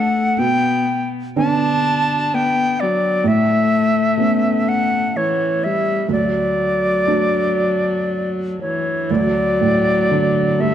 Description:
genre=celtic folk, Celtic slow air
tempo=62 BPM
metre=3/4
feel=uneven beats, rubato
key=D major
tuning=A4 = 440 Hz
part: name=bright reedy wooden flute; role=melody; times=0.0-10.7 s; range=C#5 to A5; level=-19 LUFS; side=equal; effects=none
part: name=warm viola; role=second line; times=0.0-10.7 s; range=E3 to D4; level=-20 LUFS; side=left 3 dB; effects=slapback echo
part: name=felt-muted upright piano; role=accompaniment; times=0.0-10.7 s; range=D2 to D4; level=-21 LUFS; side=right 4 dB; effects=none
room=moderate scoring stage reverb, RT60 1.6 s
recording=dark, warm production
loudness=-15 LUFS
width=side -10 dB against mid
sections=0.0-9.1 A section; 9.1-10.7 A section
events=none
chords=0.0 Bm7; 3.2 Aadd9; 6.1 D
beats=| 0.36 1.35 2.31 | 3.25 4.18 5.13 | 6.09 7.07 8.08 | 9.10 10.09

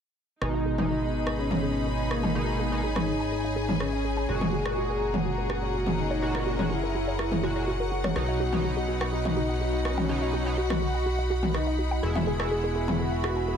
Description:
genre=melodic techno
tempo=124 BPM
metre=4/4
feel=straight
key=G# minor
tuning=A4 = 441 Hz
part: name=soft supersaw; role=melody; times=0.4-13.6 s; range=A#3 to G#4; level=-31 LUFS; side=equal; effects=low-pass filter, ping-pong delay
part: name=dark analog pad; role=sustained chords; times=0.4-13.6 s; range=F#4 to B5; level=-37 LUFS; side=left 4 dB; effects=chorus
part: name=warbly dusty pluck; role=arpeggios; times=0.4-13.6 s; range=F#4 to G#5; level=-36 LUFS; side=right 1 dB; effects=chorus, tape echo
part: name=sync-sweep polysynth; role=stabs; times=0.4-13.6 s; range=A#2 to F#4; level=-32 LUFS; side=equal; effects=chorus, tape echo
part: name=fat analog bass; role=bass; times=0.4-13.6 s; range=E1 to B1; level=-31 LUFS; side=equal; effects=none
part: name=punchy analog drum machine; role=drums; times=0.4-13.3 s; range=rim click, toms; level=-30 LUFS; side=equal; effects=none
part: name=clear studio string section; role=texture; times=0.4-13.6 s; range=B3 to B5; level=-36 LUFS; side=left 2 dB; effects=none
room=light reverb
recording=none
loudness=-25 LUFS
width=side -7 dB against mid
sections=0.4-13.6 A section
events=filter sweep on synth arpeggio sound 0.4-13.6; filter sweep on supersaw synth 0.4-13.6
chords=0.4 G#m; 4.3 F#add9; 8.2 B; 12.0 E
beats=| 0.42 0.90 1.38 1.87 | 2.35 2.84 3.32 3.80 | 4.29 4.77 5.25 5.74 | 6.22 6.71 7.19 7.67 | 8.16 8.64 9.13 9.61 | 10.09 10.58 11.06 11.55 | 12.03 12.51 13.00 13.48

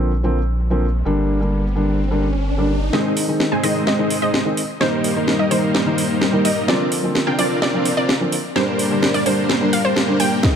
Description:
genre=EDM, festival progressive house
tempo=128 BPM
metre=4/4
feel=straight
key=unclear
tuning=A4 = 442 Hz
part: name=felt-muted upright piano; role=accompaniment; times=0.0-10.6 s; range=D3 to Eb4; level=-21 LUFS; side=equal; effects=sidechain pumping, ping-pong delay
part: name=saturated sub bass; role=bass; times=0.0-2.9 s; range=G1 to Bb1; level=-20 LUFS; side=equal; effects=sidechain pumping
part: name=riser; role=sound effects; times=0.6-2.9, 10.4-10.6 s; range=none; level=-29 LUFS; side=equal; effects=none
part: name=wide unison pluck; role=arpeggios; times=2.9-10.6 s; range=C5 to Ab5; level=-24 LUFS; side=equal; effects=sidechain pumping, ping-pong delay
part: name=dense compressed supersaw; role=riff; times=2.9-10.6 s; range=G3 to Ab5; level=-20 LUFS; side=equal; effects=sidechain pumping, low-pass filter, ping-pong delay
part: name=house drum kit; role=drums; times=2.9-10.5 s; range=hi-hat, snare drum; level=-22 LUFS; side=right 1 dB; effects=small room ambience
part: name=electronic kick drum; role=drums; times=10.4-10.5 s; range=none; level=-16 LUFS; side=equal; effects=small room ambience
room=light reverb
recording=low-pass filter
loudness=-16 LUFS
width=side -8 dB against mid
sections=0.0-2.9 A section; 2.9-10.6 B section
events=filter sweep 0.0-2.9; riser 0.6-2.9; build-up 2.9-10.6; drum fill 2.9-10.6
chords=0.0 Bbadd9; 1.1 Gm; 2.9 Ab; 4.8 Eb; 6.7 Bbadd9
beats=0.12 0.59 | 1.06 1.53 2.00 2.46 | 2.93 3.40 3.87 4.34 | 4.81 5.28 5.75 6.21 | 6.68 7.15 7.62 8.09 | 8.56 9.03 9.50 9.96 | 10.43

